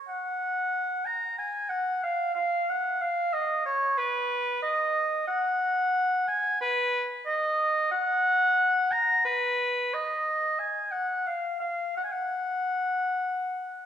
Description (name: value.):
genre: classical, baroque-style fantasia for unaccompanied oboe.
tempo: 91 BPM.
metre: 4/4.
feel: rubato.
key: F# major from 4.0 s.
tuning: A4 = 437 Hz.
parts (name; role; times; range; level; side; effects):
warm oboe; solo; 0.1-13.9 s; B4 to Bb5; -25 LUFS; equal; none.
room: wet scoring stage reverb, RT60 1.6 s.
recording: recorded in a church or concert hall.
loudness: -25 LUFS.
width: side -9 dB against mid.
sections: 0.0-13.9 A section.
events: none.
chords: none.